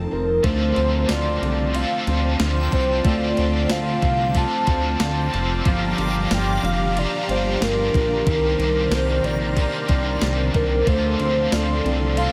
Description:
dream pop; 92 BPM; 4/4; straight; A4 = 440 Hz
warbly nostalgic lead; melody; 0.0-12.3 s; Bb4 to A5; -27 LUFS; equal; chorus, dub echo, shimmer reverb
phased analog pad; sustained chords; 0.0-12.3 s; F3 to C6; -32 LUFS; equal; phaser, chorus, shimmer reverb
clean electric guitar; arpeggios; 0.0-12.3 s; Eb3 to G4; -29 LUFS; equal; analog chorus, dub echo, shimmer reverb
chorused synth bass; bass; 0.0-12.3 s; F1 to D2; -26 LUFS; equal
crunchy overdriven guitar; accompaniment; 0.4-12.3 s; G2 to A4; -29 LUFS; equal; harmonic tremolo, subtle chorus, dub echo, shimmer reverb
clean 12-bit digital drum machine; drums; 0.4-12.3 s; kick drum, ride cymbal, snare drum, tambourine; -26 LUFS; equal
backwards swelling texture; texture; 2.6-12.3 s; G5; -40 LUFS; equal
moderate spring reverb, RT60 1.6 s, digital ambience; echo-heavy mix; -21 LUFS; mono
0.4-12.3 A section
0.4 Dm7; 5.7 Gm7; 8.3 Cm9; 10.9 Dm7
| 0.44 1.09 1.74 2.40 | 3.05 3.70 4.35 5.00 | 5.66 6.31 6.96 7.61 | 8.27 8.92 9.57 10.22 | 10.87 11.53 12.18

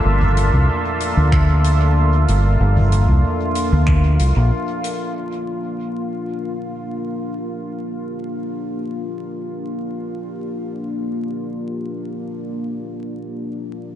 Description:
ambient dub; 94 BPM; 4/4; straight; G dorian; A4 = 441 Hz
deep dark ambient pad; sustained chords; 0.0-14.0 s; Bb3 to E5; -23 LUFS; equal; chorus, built-in reverb
fingered electric bass; bass; 0.0-4.5 s; G1 to D2; -14 LUFS; equal; tube saturation
soft-mallet drum kit; drums; 0.2-5.0 s; finger snaps, hi-hat, toms; -26 LUFS; equal; low-pass filter on hats, low-pass filter on toms, low-pass filter on snare, low-pass filter on room, dub echo
electronic kick drum; drums; 1.3-4.0 s; -18 LUFS; equal; overdrive
light reverb; vinyl crackle, nothing above 10.4 kHz; -18 LUFS; side -11 dB against mid
0.0-5.2 A section; 5.2-14.0 B section
0.0 Gm7
| 0.05 0.69 1.32 1.96 | 2.60 3.24 3.88 4.51 | 5.15 5.79 6.43 7.07 | 7.71 8.35 8.98 9.62 | 10.26 10.90 11.54 12.18 | 12.81 13.45

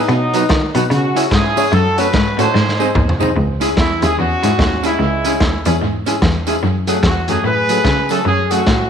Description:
ska; 147 BPM; 4/4; swing 61% on 8ths; C# minor; A4 = 440 Hz
warm horn section; melody; 0.0-8.9 s; F#3 to B#4; -18 LUFS; equal
clear upright piano; stabs; 0.0-8.6 s; A3 to C#5; -22 LUFS; left 10 dB
clear cello; bass; 0.0-8.9 s; C#2 to D#3; -18 LUFS; equal
clean electric guitar; riff; 0.1-8.8 s; C#3 to D#4; -26 LUFS; left 8 dB
crunchy breakbeat drum kit; drums; 0.1-8.8 s; hi-hat, kick drum, snare drum, toms; -19 LUFS; equal; tape echo
hollow-body jazz guitar; accompaniment; 0.3-8.6 s; F#3 to A4; -22 LUFS; right 11 dB
tambourine; percussion; 0.3-8.6 s; -34 LUFS; right 12 dB
moderate echo chamber reverb, RT60 1.3 s, small room ambience; 1960s-style stereo with parts hard left and right; -13 LUFS; side -7 dB against mid
0.0-3.4 A section; 3.4-8.9 B section
drum fill 2.5-3.4
0.1 B; 0.9 C#m; 1.7 F#m; 2.5 G#; 3.4 C#m; 6.6 F#madd9
| 0.09 0.49 0.90 1.31 | 1.72 2.13 2.54 2.95 | 3.36 3.77 4.17 4.58 | 4.99 5.40 5.81 6.22 | 6.63 7.04 7.45 7.85 | 8.26 8.67

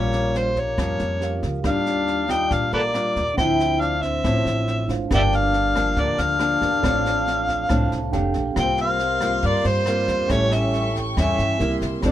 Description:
bossa nova; 139 BPM; 4/4; straight; A4 = 440 Hz
overdriven harmonica; melody; 0.0-12.1 s; A4 to G5; -22 LUFS; left 1 dB
bright reedy wooden-headed alto flute; second line; 0.0-12.1 s; G3 to E4; -28 LUFS; left 2 dB
mellow tine electric piano; accompaniment; 0.0-12.1 s; C4 to A5; -30 LUFS; right 7 dB
nylon-string guitar; accompaniment; 0.0-12.1 s; G2 to G4; -27 LUFS; left 1 dB
upright bass; bass; 0.0-12.1 s; F1 to G2; -26 LUFS; equal
jazz brush drum kit; drums; 0.1-12.1 s; kick drum, rim click, snare drum; -30 LUFS; equal
warm chamber string section; sustained chords; 8.6-12.1 s; F4 to D6; -32 LUFS; left 1 dB
moderate studio ambience, RT60 0.5 s; minimal, uncompressed stereo recording; -19 LUFS; side -12 dB against mid
0.0-8.6 A section; 8.6-12.1 A section
tine electric piano fill 7.3-8.6
0.0 Bbm6; 1.6 Ebmaj9; 3.4 Dm9; 5.1 Gm7; 6.8 F6/A; 8.1 F69; 8.6 C7sus4; 10.3 A7; 11.6 C7
0.35 0.78 1.21 | 1.65 2.08 2.51 2.94 | 3.38 3.81 4.24 4.67 | 5.11 5.54 5.97 6.41 | 6.84 7.27 7.71 8.14 | 8.57 9.00 9.44 9.87 | 10.30 10.73 11.17 11.60 | 12.03

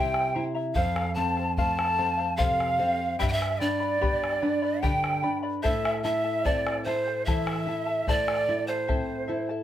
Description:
andean folk, Andean ensemble; 74 BPM; 3/4; straight; A minor; A4 = 439 Hz
breathy pan flute; melody; 0.0-9.5 s; C5 to A5; -28 LUFS; equal
breathy quena; second line; 0.0-9.5 s; C5 to A5; -32 LUFS; right 3 dB
charango; accompaniment; 0.0-9.6 s; E4 to B5; -33 LUFS; left 5 dB
nylon-string guitar; accompaniment; 0.0-9.6 s; F2 to E4; -31 LUFS; right 2 dB
bombo; percussion; 0.1-9.1 s; -30 LUFS; left 2 dB
wet studio reverb, RT60 0.5 s; -24 LUFS; side -11 dB against mid
0.0-9.6 A section
0.0 C7; 0.8 F; 3.2 G; 5.6 Am
| 0.77 1.58 2.40 | 3.21 4.02 4.83 | 5.64 6.46 7.27 | 8.08 8.89

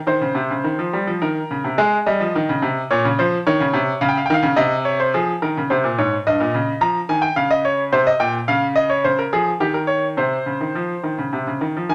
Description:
classical, baroque-style two-part invention for grand piano; 107 BPM; 3/4; straight; A4 = 440 Hz
bright grand piano; solo; 0.1-11.9 s; G2 to Bb5; -19 LUFS; equal
moderate studio reverb, RT60 1.0 s; -19 LUFS; mono
0.0-1.8 A section; 1.8-5.1 B section; 5.1-11.9 A section
0.1 Cmadd11; 1.2 Eb5; 1.8 Ab; 2.9 Bbm; 3.5 Eb7; 4.6 Cm; 5.1 Fm; 6.3 Eb/G; 6.8 Db; 7.9 Cm; 8.5 Db; 9.0 Bbm/Db; 9.6 Eb7; 10.2 Cmadd11
| 0.07 0.65 1.22 | 1.78 2.35 2.91 | 3.46 4.02 4.57 | 5.14 5.70 6.26 | 6.81 7.37 7.92 | 8.48 9.03 9.59 | 10.17 10.74 11.31 | 11.89

